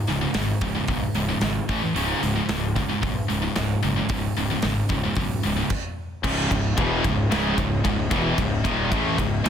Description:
heavy metal; 112 BPM; 4/4; straight; C# minor; A4 = 437 Hz
scooped high-gain guitar; riff; 0.0-9.5 s; C#2 to A3; -26 LUFS; left 7 dB; distortion
scooped high-gain guitar; riff; 0.0-9.5 s; C#2 to A3; -27 LUFS; right 9 dB; distortion
fuzz fingered electric bass; bass; 0.1-9.5 s; C#1 to B1; -28 LUFS; equal; overdrive
big rock drum kit; drums; 0.1-9.5 s; crash cymbal, hi-hat, kick drum, ride cymbal, snare drum; -28 LUFS; equal; soft clipping on kick
bright studio string section; sustained chords; 6.2-9.5 s; C#4 to E5; -35 LUFS; equal
sludgy distorted guitar; riff; 6.2-9.5 s; C#2 to A3; -28 LUFS; equal; overdrive
little or no reverb; dense, heavily limited modern master; -21 LUFS; side -8 dB against mid
0.0-6.2 A section; 6.2-9.5 B section
stop 5.7-6.2; half time 6.2-9.5
0.0 C#5; 1.7 A5; 2.0 C#5; 5.7 N.C.; 6.2 C#m

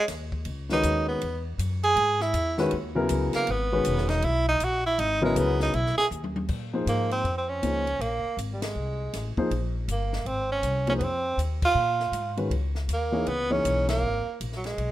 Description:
modal jazz; 159 BPM; 4/4; swing 64% on 8ths; A4 = 440 Hz
breathy tenor saxophone; melody; 0.0-14.9 s; Gb3 to Ab4; -26 LUFS; right 2 dB
upright bass; bass; 0.1-14.9 s; Fb1 to Bb2; -30 LUFS; left 1 dB
compact cocktail drum kit; drums; 0.1-14.9 s; crash cymbal, hi-hat, kick drum, ride cymbal, snare drum, toms; -37 LUFS; left 1 dB
warm grand piano; accompaniment; 0.7-14.0 s; Db3 to Db5; -27 LUFS; left 2 dB
light reverb, small room ambience; rough home demo mix; -24 LUFS; side -14 dB against mid
0.0-6.5 A section; 6.5-14.9 B section
tenor saxophone solo 0.0-6.5; drum fill 6.1-6.5; band accent 8.6, 11.6, 13.8
0.5 Dbm9; 6.5 Bb7sus2; 12.5 Dbm9

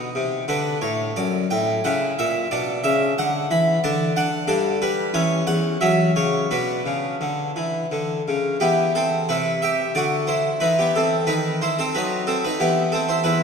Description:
classical, baroque-style suite movement for harpsichord; 90 BPM; 3/4; rubato; B minor, E minor from 8.6 s; A4 = 440 Hz
harpsichord; solo; 0.0-13.4 s; E2 to B5; -19 LUFS; equal
wet church reverb, RT60 3.0 s; minimal, uncompressed stereo recording; -19 LUFS; side -6 dB against mid
0.0-8.6 A section; 8.6-13.4 A section
0.5 Gmaj9#11; 1.8 F#7/C#; 2.5 Bm; 3.8 N.C.; 4.5 G; 5.1 C#madd11/E; 5.8 F#5; 6.5 Bm; 8.6 Em; 10.6 B; 12.6 Em

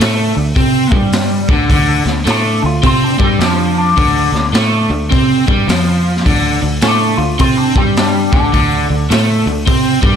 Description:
blues rock power trio and southern rock; 105 BPM; 4/4; swing 63% on 8ths; D minor; A4 = 440 Hz
crunchy overdriven guitar; riff; 0.0-10.2 s; D3 to C4; -14 LUFS; right 1 dB; spring reverb
overdriven fingered electric bass; bass; 0.0-10.2 s; D2 to C3; -17 LUFS; equal
raw garage drum kit; drums; 0.0-10.1 s; hi-hat, kick drum, snare drum; -16 LUFS; equal
lightly driven lead guitar; melody; 2.3-9.1 s; C4 to F4; -18 LUFS; left 3 dB; wah, digital delay
light reverb, small room ambience; -10 LUFS; side -8 dB against mid
0.0-10.2 A section
0.0 Dm

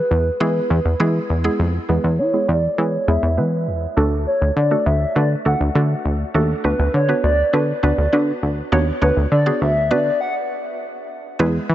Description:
dance-pop; 101 BPM; 4/4; straight; B dorian; A4 = 440 Hz
hollow clarinet-like synth lead; melody; 0.0-10.3 s; B4 to F#5; -22 LUFS; equal; chorus, low-pass filter, analog delay
plucky analog bass; bass; 0.1-11.7 s; D2 to E3; -18 LUFS; equal
mallet-like synth pluck; accompaniment; 0.4-11.6 s; G#3 to C#5; -23 LUFS; right 2 dB; chorus, low-pass filter
moderate huge ambient reverb, RT60 4.8 s; dreamy mix soaked in reverb, nothing above 8.0 kHz; -16 LUFS; side -13 dB against mid
0.0-1.9 A section; 1.9-11.4 B section
build-up 1.9-11.4; filter sweep 1.9-11.4; stop 10.2-11.4
0.0 E; 4.0 D; 6.6 Bm/D

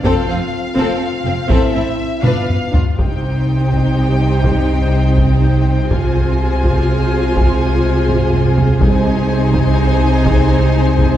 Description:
cinematic, epic orchestral film score; 82 BPM (dotted quarters); 6/8; straight; C minor; A4 = 443 Hz
warm symphonic violin section; second line; 0.0-11.2 s; C4 to C5; -25 LUFS; left 2 dB
rich studio viola section; accompaniment; 0.0-11.2 s; C4 to F4; -23 LUFS; equal
dark French horn section; sustained chords; 0.0-11.2 s; G3 to F4; -23 LUFS; left 3 dB
warm symphonic cello section; bass; 0.0-11.2 s; F2 to C3; -18 LUFS; right 1 dB
warm symphonic double bass section; bass; 0.0-11.2 s; F1 to C2; -18 LUFS; right 1 dB
taiko ensemble; drums; 0.0-11.2 s; -18 LUFS; equal
warm symphonic violin section; melody; 0.1-11.2 s; E5 to Ab5; -25 LUFS; left 2 dB
warm symphonic string section; sustained chords; 3.0-11.2 s; C4 to C5; -23 LUFS; right 1 dB
timpani; percussion; 8.8-9.5 s; C3; -21 LUFS; right 1 dB
wet scoring stage reverb, RT60 1.6 s; heard from further back in the room; -12 LUFS; side -12 dB against mid
0.0-3.0 A section; 3.0-11.2 B section
drum fill 2.2-3.0, 8.1-8.8
0.0 F; 1.5 Am; 2.2 G7; 3.0 Cm; 5.9 Fm/C; 8.8 Ab/C

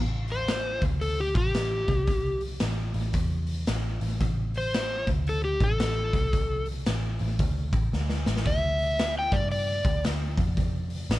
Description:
blues rock power trio and southern rock; 113 BPM; 4/4; swing 63% on 8ths; A4 = 439 Hz
vintage muted picked electric bass; bass; 0.0-11.2 s; A1 to G2; -29 LUFS; equal
overdriven slide guitar; melody; 0.3-10.0 s; G4 to G5; -29 LUFS; left 1 dB
raw garage drum kit; drums; 0.3-11.2 s; hi-hat, kick drum, snare drum; -28 LUFS; equal
little or no reverb; -24 LUFS; side -16 dB against mid
0.0-11.2 A section
electric slide guitar solo 0.0-11.2; drum fill 7.9-8.5
0.0 Am; 0.8 D5; 1.3 Gsus2/A; 1.8 C5; 2.6 N.C.; 3.7 Am; 5.0 D5; 5.5 N.C.; 6.1 Am/C; 6.9 Asus4; 8.5 Dsus2; 9.2 G5; 9.8 N.C.

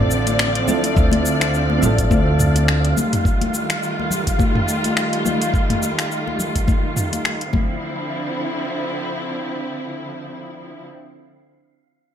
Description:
sunset chillout; 105 BPM; 4/4; swing 57% on 16ths; D minor; A4 = 440 Hz
soft electric-piano-like synth keys; accompaniment; 0.0-3.0 s; C4 to E5; -23 LUFS; right 3 dB; chorus, tremolo, auto-pan, digital delay
dark studio string section; sustained chords; 0.0-10.9 s; D3 to D5; -23 LUFS; equal; low-pass filter
upright bass; bass; 0.0-2.9 s; A1 to D2; -19 LUFS; equal
wind-like tuned noise texture; texture; 0.0-7.8 s; F5; -30 LUFS; right 4 dB; built-in reverb
deep house drum kit; drums; 0.1-7.5 s; cabasa, finger snaps, hi-hat, toms; -23 LUFS; equal
congas; percussion; 0.3-7.7 s; -25 LUFS; left 4 dB
electronic kick drum; drums; 1.0-7.7 s; -19 LUFS; equal
moderate plate reverb, RT60 1.6 s, digital ambience; -17 LUFS; side -9 dB against mid
0.0-7.8 A section; 7.8-10.1 B section
0.0 Dm9; 3.0 F9; 7.5 Dm9

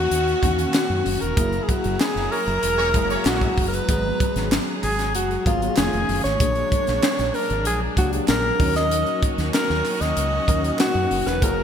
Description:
polished 1980s jazz-funk pop; 96 BPM; 4/4; straight; A4 = 440 Hz
breathy alto saxophone; melody; 0.0-11.6 s; E#4 to D#5; -23 LUFS; equal
tine electric piano; accompaniment; 0.0-11.6 s; D#3 to A#4; -28 LUFS; left 2 dB; ensemble chorus
bright studio string section; sustained chords; 0.0-11.6 s; D#3 to A#5; -31 LUFS; equal
fingered electric bass; bass; 0.0-11.6 s; E1 to F#2; -26 LUFS; right 1 dB
crisp fusion drum kit; drums; 0.1-11.6 s; hi-hat, kick drum, snare drum; -23 LUFS; equal; gated reverb
group handclap; percussion; 0.7-10.9 s; -37 LUFS; right 6 dB
mellow horn section; second line; 2.3-3.6 s; A#3 to C#5; -30 LUFS; right 1 dB
moderate lush hall reverb, RT60 2.2 s; bright 1980s-style digital production; -19 LUFS; side -8 dB against mid
0.0-11.6 A section
band accent 1.4-3.9
0.0 D#m7; 1.4 F#9; 3.9 G#m9; 5.8 F7alt; 6.4 A#7alt; 8.6 D#m7

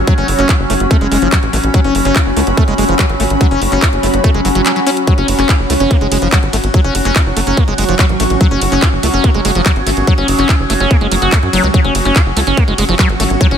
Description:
psychedelic trance; 144 BPM; 4/4; straight; A4 = 440 Hz
overtone-sweeping drone; sustained chords; 0.0-13.6 s; F#3 to G#4; -19 LUFS; equal; chorus, built-in reverb, phaser, sidechain pumping
tight sequencer bass; bass; 0.0-13.6 s; F#1 to F#2; -17 LUFS; equal
granular cloud pad; texture; 0.0-13.6 s; C#4 to C#6; -19 LUFS; equal; built-in reverb, sidechain pumping
liquid acid bass; riff; 0.1-13.6 s; E#3 to F#4; -17 LUFS; moving between left 5 dB and right 4 dB; chorus, auto-pan, sidechain pumping, dub echo
electronic kick drum; drums; 0.1-13.5 s; -11 LUFS; equal; small room ambience
garage drum kit; drums; 0.1-13.6 s; handclaps, hi-hat, ride cymbal; -19 LUFS; equal; small room ambience
light reverb, digital ambience; -10 LUFS; side -8 dB against mid
0.0-13.6 A section
0.0 F#5

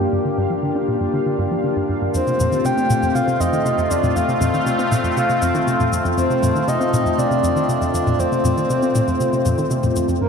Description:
ambient, sequencer-driven space music; 119 BPM; 4/4; straight; A4 = 440 Hz
sweeping resonant pad; sustained chords; 0.0-10.3 s; D3 to G4; -21 LUFS; left 2 dB; chorus
hollow square pluck; riff; 0.0-10.3 s; F2 to D4; -22 LUFS; equal; chorus, ping-pong delay
bubbling stepped-filter texture; texture; 0.0-10.2 s; F4 to F5; -33 LUFS; equal
breathy flute-like synth lead; melody; 2.1-10.3 s; Bb4 to G5; -21 LUFS; right 1 dB; chorus, ping-pong delay
electronic cabasa and toms; percussion; 2.1-10.2 s; -26 LUFS; left 2 dB
wet cathedral reverb, RT60 6.7 s; in a vast, echoing space; -16 LUFS; side -6 dB against mid
0.0-10.2 A section
filter sweep on synth arpeggio sound 0.0-10.2
0.0 Gm; 2.1 F

